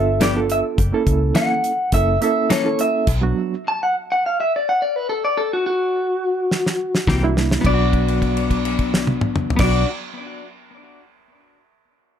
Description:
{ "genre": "straight-eighth soul blues", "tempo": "105 BPM", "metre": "4/4", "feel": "straight", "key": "B minor", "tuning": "A4 = 437 Hz", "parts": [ { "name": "electric guitar through a small old amp", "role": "melody", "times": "0.0-9.8 s", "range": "F#4 to A5", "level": "-21 LUFS", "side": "left 1 dB", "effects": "plate reverb" }, { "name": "reed electric piano", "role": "accompaniment", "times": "0.0-3.5, 7.2-9.9 s", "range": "F#3 to A4", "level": "-23 LUFS", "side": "right 6 dB", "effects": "fast tremolo, plate reverb" }, { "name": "vintage muted fingered electric bass", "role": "bass", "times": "0.0-3.3, 7.1-9.8 s", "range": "F#1 to C#2", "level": "-21 LUFS", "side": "equal", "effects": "none" }, { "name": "clean electric guitar", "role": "stabs", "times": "0.2-2.7, 7.1-9.9 s", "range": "E3 to A4", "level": "-24 LUFS", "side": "left 5 dB", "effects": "plate reverb, digital delay" }, { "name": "damped 70s drum kit", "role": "drums", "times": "0.2-9.7 s", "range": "crash cymbal, hi-hat, kick drum, snare drum, toms", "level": "-22 LUFS", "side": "equal", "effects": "none" } ], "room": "moderate club reverb, RT60 0.7 s", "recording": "none", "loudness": "-17 LUFS", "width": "side -9 dB against mid", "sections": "0.0-7.6 A section; 7.6-9.9 B section", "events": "stop 3.1-7.1; drum fill 6.5-7.6; held note 7.6-9.6", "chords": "0.0 G7; 0.8 F#7#9; 3.1 Bm; 7.1 C7; 7.6 Bm", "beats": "0.21 | 0.78 1.35 1.93 2.50 | 3.07 3.65 4.22 4.79 | 5.36 5.93 6.50 7.08 | 7.65 8.22 8.79 9.36" }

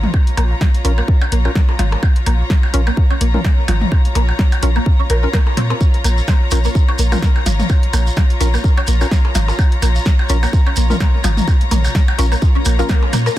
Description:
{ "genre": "minimal techno", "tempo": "127 BPM", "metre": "4/4", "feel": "swing 56% on 16ths", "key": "Bb minor", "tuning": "A4 = 441 Hz", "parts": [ { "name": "punchy sub bass", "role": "bass", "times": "0.0-13.3 s", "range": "Ab1 to Bb2", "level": "-15 LUFS", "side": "equal", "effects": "sidechain pumping" }, { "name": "electronic toms and percussion blips", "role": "percussion", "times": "0.0-13.3 s", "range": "none", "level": "-25 LUFS", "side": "left 1 dB", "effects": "dub echo" }, { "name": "bright symphonic string section", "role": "texture", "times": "0.0-13.4 s", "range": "F4 to Bb5", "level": "-25 LUFS", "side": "left 2 dB", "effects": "sidechain pumping" }, { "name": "electronic kick drum", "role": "drums", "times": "0.1-13.0 s", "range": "none", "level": "-13 LUFS", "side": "equal", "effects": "none" }, { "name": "punchy analog drum machine", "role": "drums", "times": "0.3-13.2 s", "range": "hi-hat, snare drum", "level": "-25 LUFS", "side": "equal", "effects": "none" }, { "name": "mallet-like synth pluck", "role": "riff", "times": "0.4-13.3 s", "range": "F3 to Bb4", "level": "-25 LUFS", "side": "equal", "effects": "phaser, ensemble chorus, sidechain pumping, dub echo" }, { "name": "percussive organ stab", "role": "stabs", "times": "0.8-12.9 s", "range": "Db4 to Bb4", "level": "-27 LUFS", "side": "left 2 dB", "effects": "chorus, dub echo" }, { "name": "shekere", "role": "percussion", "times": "5.8-13.4 s", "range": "none", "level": "-28 LUFS", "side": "right 5 dB", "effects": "none" }, { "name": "swell", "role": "sound effects", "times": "12.6-13.4 s", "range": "none", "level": "-27 LUFS", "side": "left 1 dB", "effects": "none" } ], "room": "little or no reverb", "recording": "dense, heavily limited modern master", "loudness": "-12 LUFS", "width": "side -14 dB against mid", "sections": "0.0-13.4 A section", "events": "swell 12.6-13.4", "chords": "0.0 Bbm", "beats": "| 0.14 0.61 1.08 1.56 | 2.03 2.50 2.97 3.44 | 3.92 4.39 4.86 5.33 | 5.81 6.28 6.75 7.22 | 7.70 8.17 8.64 9.12 | 9.59 10.06 10.53 11.00 | 11.48 11.95 12.42 12.89 | 13.37" }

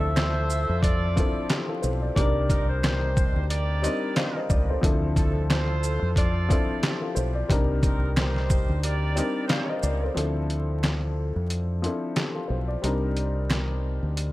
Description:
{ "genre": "hip hop, boom-bap hip-hop", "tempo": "90 BPM", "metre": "4/4", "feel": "swing 58% on 16ths", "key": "D phrygian", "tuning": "A4 = 440 Hz", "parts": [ { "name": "breathy tenor saxophone", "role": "melody", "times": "0.0-4.0 s", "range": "C5 to E5", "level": "-32 LUFS", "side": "equal", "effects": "high-pass filter, low-pass filter, tape echo" }, { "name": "dark upright piano", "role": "accompaniment", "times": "0.0-14.3 s", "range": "F3 to F5", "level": "-30 LUFS", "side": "left 2 dB", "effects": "cassette tape, high-pass filter, low-pass filter" }, { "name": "warm horn section", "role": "stabs", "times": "0.0-9.7 s", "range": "A3 to D5", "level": "-33 LUFS", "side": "right 2 dB", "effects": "high-pass filter, low-pass filter, tape echo" }, { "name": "deep dub fingered electric bass", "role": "bass", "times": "0.0-14.3 s", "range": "B1 to F2", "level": "-26 LUFS", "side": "equal", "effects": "none" }, { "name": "trip hop sampler-style drum kit", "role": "drums", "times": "0.2-14.3 s", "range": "handclaps, hi-hat, kick drum, shaker, snare drum", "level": "-25 LUFS", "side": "equal", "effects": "overdrive" }, { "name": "finger snaps", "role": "percussion", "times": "0.2-13.7 s", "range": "none", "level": "-40 LUFS", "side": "right 4 dB", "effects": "none" } ], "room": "little or no reverb", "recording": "vinyl crackle", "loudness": "-22 LUFS", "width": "side -17 dB against mid", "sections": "0.0-10.2 A section; 10.2-14.3 B section", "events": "break 8.8-10.2, 10.2-14.3", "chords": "0.0 Dm9; 2.2 Cm9; 4.8 Dm9; 7.5 Cm9; 10.2 Dm9; 12.8 Cm9", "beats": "0.16 0.83 1.50 | 2.16 2.83 3.50 4.16 | 4.83 5.50 6.16 6.83 | 7.50 8.16 8.83 9.50 | 10.16 10.83 11.50 12.16 | 12.83 13.50 14.16" }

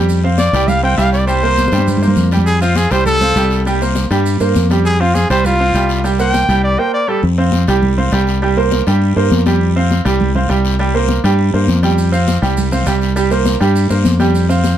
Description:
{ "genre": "latin, salsa", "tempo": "202 BPM", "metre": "4/4", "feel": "straight", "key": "unclear", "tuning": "A4 = 440 Hz", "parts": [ { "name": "bright upright piano", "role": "accompaniment", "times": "0.0-14.7 s", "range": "G3 to G5", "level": "-17 LUFS", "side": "right 4 dB", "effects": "none" }, { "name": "fingered electric bass", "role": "bass", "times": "0.0-14.7 s", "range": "C2 to G2", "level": "-14 LUFS", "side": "left 1 dB", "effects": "none" }, { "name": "congas", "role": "percussion", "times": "0.1-14.8 s", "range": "none", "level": "-20 LUFS", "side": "left 1 dB", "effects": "none" }, { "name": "guiro", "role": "percussion", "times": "0.1-14.8 s", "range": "none", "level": "-29 LUFS", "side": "left 8 dB", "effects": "none" }, { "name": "maracas", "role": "percussion", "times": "0.1-6.6, 12.0-14.8 s", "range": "none", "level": "-32 LUFS", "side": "right 3 dB", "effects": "none" }, { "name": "clear trumpet", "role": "melody", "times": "0.4-7.2 s", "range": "F4 to G5", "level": "-16 LUFS", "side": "equal", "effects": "none" } ], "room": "moderate studio ambience, RT60 0.5 s", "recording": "dark, warm production", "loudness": "-11 LUFS", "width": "side -10 dB against mid", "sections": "0.0-7.2 A section; 7.2-14.8 B section", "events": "trumpet solo 0.0-7.2; drum fill 1.6-2.5", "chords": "0.1 Fsus2; 1.3 C5; 2.5 Fadd9; 3.7 C5; 4.8 Fsus2; 6.0 C5; 7.2 Fsus2; 8.4 C5; 9.6 Fsus2; 10.8 C5; 12.0 Fsus2; 13.2 C5", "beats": "| 0.09 0.39 0.69 0.98 | 1.28 1.58 1.87 2.17 | 2.47 2.77 3.06 3.36 | 3.66 3.96 4.25 4.55 | 4.85 5.15 5.45 5.74 | 6.04 6.34 6.64 6.93 | 7.23 7.53 7.83 8.12 | 8.42 8.72 9.01 9.31 | 9.61 9.90 10.20 10.50 | 10.79 11.09 11.39 11.68 | 11.98 12.28 12.57 12.87 | 13.17 13.46 13.76 14.05 | 14.35 14.65" }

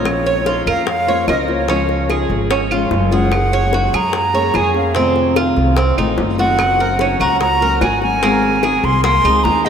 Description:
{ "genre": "latin, Cuban son and guajira", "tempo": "147 BPM", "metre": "4/4", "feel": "straight", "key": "Bb minor", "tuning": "A4 = 439 Hz", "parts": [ { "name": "breathy silver concert flute", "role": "melody", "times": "0.0-9.7 s", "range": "Db5 to C6", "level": "-18 LUFS", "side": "equal", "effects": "none" }, { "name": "nylon-string guitar", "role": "accompaniment", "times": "0.0-9.7 s", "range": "C3 to C5", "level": "-20 LUFS", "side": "left 2 dB", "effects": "none" }, { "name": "Cuban tres", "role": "arpeggios", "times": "0.0-9.7 s", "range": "Bb3 to Db5", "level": "-20 LUFS", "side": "right 4 dB", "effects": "none" }, { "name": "upright bass", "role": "bass", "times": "0.0-9.7 s", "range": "Gb1 to Gb2", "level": "-20 LUFS", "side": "equal", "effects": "none" }, { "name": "bongos", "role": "percussion", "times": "0.1-9.7 s", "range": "none", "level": "-24 LUFS", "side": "left 5 dB", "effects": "none" }, { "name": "claves", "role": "percussion", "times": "0.1-9.5 s", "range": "none", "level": "-30 LUFS", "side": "right 5 dB", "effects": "none" } ], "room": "wet cathedral reverb, RT60 6.7 s", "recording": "in a vast, echoing space", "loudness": "-13 LUFS", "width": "side -7 dB against mid", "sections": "0.1-9.7 A section", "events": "none", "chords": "0.1 Bbmadd9; 1.7 Db; 3.3 Gbadd9; 5.0 F7; 6.6 Gb; 8.2 Abadd9", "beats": "| 0.05 0.46 0.87 1.28 | 1.69 2.10 2.51 2.92 | 3.33 3.73 4.14 4.55 | 4.96 5.37 5.78 6.19 | 6.59 7.00 7.41 7.82 | 8.23 8.63 9.04 9.45" }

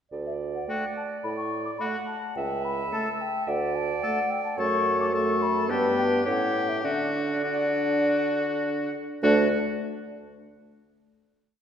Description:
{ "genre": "quick classical-period movement for wind quintet", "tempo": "99-109 BPM", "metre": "4/4", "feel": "straight", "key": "D major", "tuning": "A4 = 438 Hz", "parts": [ { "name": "warm clarinet", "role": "accompaniment", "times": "0.1-9.5 s", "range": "D4 to F#5", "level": "-31 LUFS", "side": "right 4 dB", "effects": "none" }, { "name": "mellow bassoon", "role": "bass", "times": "0.1-9.5 s", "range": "C#2 to D3", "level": "-30 LUFS", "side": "right 2 dB", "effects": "none" }, { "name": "mellow hollow baroque flute", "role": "melody", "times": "0.3-9.6 s", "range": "D5 to D6", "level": "-29 LUFS", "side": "left 5 dB", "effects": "none" }, { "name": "bright oboe", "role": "second line", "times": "0.7-9.5 s", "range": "F#4 to A4", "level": "-32 LUFS", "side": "left 1 dB", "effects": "none" }, { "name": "warm French horn", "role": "accompaniment", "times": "0.7-9.5 s", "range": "A3 to D4", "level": "-30 LUFS", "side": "equal", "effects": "none" } ], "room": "wet concert hall reverb, RT60 2.0 s", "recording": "heard from further back in the room", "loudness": "-24 LUFS", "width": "side -8 dB against mid", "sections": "0.1-9.2 A section; 9.2-11.6 final chord", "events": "none", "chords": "0.1 D; 2.4 A/C#; 3.5 D5; 4.6 F#m; 5.7 G; 6.3 A7; 6.8 D; 9.2 D5", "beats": "| 0.12 0.69 1.25 1.81 | 2.37 2.93 3.48 4.04 | 4.59 5.14 5.70 6.26 | 6.84 7.44 8.03 8.63 | 9.23" }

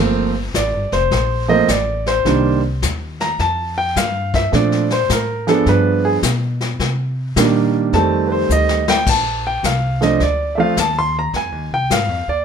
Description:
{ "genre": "jazz piano trio", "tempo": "106 BPM", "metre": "4/4", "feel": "swing 67% on 8ths", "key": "Bb major", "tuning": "A4 = 438 Hz", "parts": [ { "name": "warm grand piano", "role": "melody", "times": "0.0-12.4 s", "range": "Eb3 to C6", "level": "-16 LUFS", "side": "right 2 dB", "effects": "none" }, { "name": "upright bass", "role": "bass", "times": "0.0-12.4 s", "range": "F1 to C3", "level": "-21 LUFS", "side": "left 1 dB", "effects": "none" }, { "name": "jazz brush drum kit", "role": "drums", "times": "0.5-12.4 s", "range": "brushed snare drum, crash cymbal, hi-hat, kick drum, snare drum", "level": "-22 LUFS", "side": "left 4 dB", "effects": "none" } ], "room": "light reverb", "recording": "none", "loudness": "-15 LUFS", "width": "side -7 dB against mid", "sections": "0.0-9.1 A section; 9.1-12.4 A section", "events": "grand piano solo 0.0-12.4; drum fill 8.5-9.1", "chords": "0.0 Gm11; 2.3 Cm7; 3.4 Fsus2; 4.5 Bbmaj9; 5.7 G7b9; 6.8 Cm7; 7.9 F13; 9.1 Bbmaj9; 11.3 Fm7", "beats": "0.54 1.11 1.68 | 2.25 2.82 3.39 3.96 | 4.53 5.10 5.67 6.23 | 6.80 7.37 7.94 8.50 | 9.07 9.64 10.21 10.77 | 11.34 11.91" }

